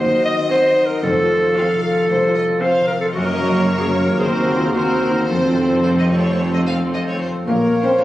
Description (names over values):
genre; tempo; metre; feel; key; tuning
cinematic, playful, whimsical film cue; 113 BPM; 4/4; straight; unclear; A4 = 441 Hz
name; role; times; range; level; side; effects
rich studio violin section; second line; 0.0-8.0 s; A4 to F5; -27 LUFS; left 1 dB; none
warm clarinet; second line; 0.0-8.0 s; C4 to Eb5; -19 LUFS; equal; none
concert harp; arpeggios; 0.0-8.0 s; F2 to Gb4; -22 LUFS; left 2 dB; none
rich chamber double bass section; bass; 0.0-7.9 s; F1 to Eb2; -24 LUFS; right 1 dB; none
rich studio cello section; bass; 0.0-7.9 s; C2 to Bb2; -26 LUFS; right 2 dB; none
rich chamber violin section; melody; 0.5-8.0 s; C5 to F5; -26 LUFS; left 1 dB; none
rich chamber viola section; accompaniment; 0.5-8.0 s; Bb3 to Bb4; -23 LUFS; right 1 dB; none
vibraphone with medium mallets; melody; 7.5-8.0 s; Bb4 to Db5; -18 LUFS; left 1 dB; none
clear oboe; second line; 7.5-8.0 s; Db5; -29 LUFS; equal; none
mellow hollow large flute ensemble; second line; 7.5-8.0 s; F5; -27 LUFS; right 5 dB; none
mellow French horn section; sustained chords; 7.5-8.0 s; Bb3 to Db4; -18 LUFS; left 1 dB; none
room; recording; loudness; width
wet recital hall reverb, RT60 1.4 s; recorded on a phone in the room, studio ambience, compression, nothing above 10.9 kHz; -15 LUFS; side -15 dB against mid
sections
0.0-7.5 A section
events
none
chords
0.0 Cdim/Eb; 1.0 F; 3.1 Gb; 4.2 Cm7b5/Eb; 5.3 F; 7.5 Bbm